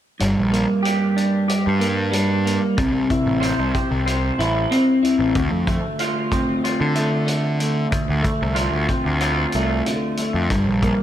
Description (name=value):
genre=psychedelic rock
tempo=93 BPM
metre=4/4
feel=straight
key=D minor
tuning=A4 = 440 Hz
part: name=electric guitar through a small old amp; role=riff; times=0.2-11.0 s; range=D2 to C5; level=-20 LUFS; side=equal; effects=rotary speaker
part: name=fuzz picked electric bass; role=bass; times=0.2-10.9 s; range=G1 to D3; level=-22 LUFS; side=equal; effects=overdrive
part: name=vintage drum kit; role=drums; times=0.2-11.0 s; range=hi-hat, kick drum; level=-27 LUFS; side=equal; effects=none
room=moderate lush hall reverb, RT60 2.0 s, small room ambience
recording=none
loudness=-18 LUFS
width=side -11 dB against mid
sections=0.2-11.0 A section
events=none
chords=0.2 Gm; 2.8 C; 5.4 Dm7; 10.5 Gm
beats=| 0.21 0.85 1.49 2.14 | 2.78 3.42 4.07 4.71 | 5.35 6.00 6.64 7.29 | 7.93 8.57 9.22 9.86 | 10.51